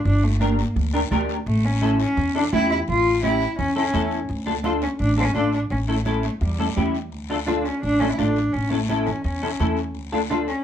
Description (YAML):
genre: latin, cumbia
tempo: 170 BPM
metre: 4/4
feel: straight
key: D harmonic minor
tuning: A4 = 439 Hz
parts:
  - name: rich cello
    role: melody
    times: 0.0-10.6 s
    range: G3 to F4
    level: -24 LUFS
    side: equal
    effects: none
  - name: upright bass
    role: bass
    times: 0.1-10.5 s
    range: G1 to E2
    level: -25 LUFS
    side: equal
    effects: none
  - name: congas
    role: percussion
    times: 0.1-10.5 s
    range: none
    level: -29 LUFS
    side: right 4 dB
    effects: none
  - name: guiro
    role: percussion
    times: 0.1-10.6 s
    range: none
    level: -38 LUFS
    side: left 8 dB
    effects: none
  - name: semi-hollow electric guitar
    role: accompaniment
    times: 0.4-10.5 s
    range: C#4 to Bb4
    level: -24 LUFS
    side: left 2 dB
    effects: analog chorus
room: moderate studio reverb, RT60 0.6 s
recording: none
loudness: -20 LUFS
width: side -9 dB against mid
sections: 0.0-4.3 A section; 4.3-10.6 B section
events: none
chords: 0.1 Gm; 1.5 A7; 4.3 Dm; 5.7 A7; 7.1 Dm; 8.5 A; 10.0 Dm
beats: | 0.06 0.41 0.76 1.11 | 1.47 1.82 2.17 2.53 | 2.88 3.23 3.58 3.94 | 4.29 4.64 5.00 5.35 | 5.71 6.06 6.41 6.77 | 7.12 7.47 7.83 8.18 | 8.54 8.89 9.24 9.60 | 9.95 10.31